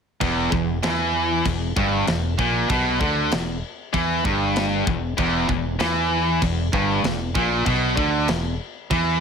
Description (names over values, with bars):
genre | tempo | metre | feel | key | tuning
heavy metal | 97 BPM | 4/4 | straight | E minor | A4 = 444 Hz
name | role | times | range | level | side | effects
high-gain distorted guitar | riff | 0.2-9.2 s | E2 to E3 | -24 LUFS | right 12 dB | distortion
scooped high-gain guitar | riff | 0.2-9.2 s | E2 to E3 | -24 LUFS | left 11 dB | distortion
growling fingered electric bass | bass | 0.2-9.2 s | E1 to E2 | -27 LUFS | equal | overdrive
tight metal drum kit | drums | 0.2-9.1 s | crash cymbal, kick drum, snare drum | -28 LUFS | left 1 dB | none
room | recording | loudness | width
studio ambience | none | -19 LUFS | side -6 dB against mid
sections
0.2-9.2 A section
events
none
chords
0.2 Em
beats
| 0.22 0.84 1.46 2.08 | 2.70 3.32 3.94 4.56 | 5.18 5.80 6.42 7.04 | 7.66 8.28 8.90